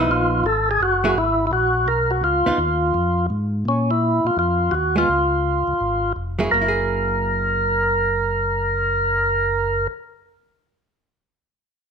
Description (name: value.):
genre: jazz.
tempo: 168 BPM.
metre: 4/4.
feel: swing 66% on 8ths.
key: unclear.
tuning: A4 = 440 Hz.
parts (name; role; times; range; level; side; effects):
percussive tonewheel organ; melody; 0.0-9.9 s; C#4 to A#4; -19 LUFS; equal; slow rotary speaker.
hollow-body jazz guitar; accompaniment; 0.0-2.6, 5.0-10.1 s; E#3 to G#4; -25 LUFS; right 3 dB; none.
mellow tonewheel organ; bass; 0.0-9.9 s; E#1 to A#2; -24 LUFS; left 1 dB; overdrive, chorus vibrato, slow rotary speaker.
room: light reverb.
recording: none.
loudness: -18 LUFS.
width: side -6 dB against mid.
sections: 0.0-3.7 A section; 3.7-6.5 B section; 6.5-9.4 C section.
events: none.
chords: 0.0 C#9 (rootless); 0.8 F#9; 2.2 C#add9; 3.7 A#5; 5.1 C#; 6.5 F#9.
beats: 0.09 0.44 | 0.80 1.16 1.51 1.87 | 2.23 2.58 2.94 3.30 | 3.65 4.01 4.37 4.73 | 5.08 5.44 5.80 6.15 | 6.51 6.87 7.23 7.58 | 7.94 8.30 8.66 9.01.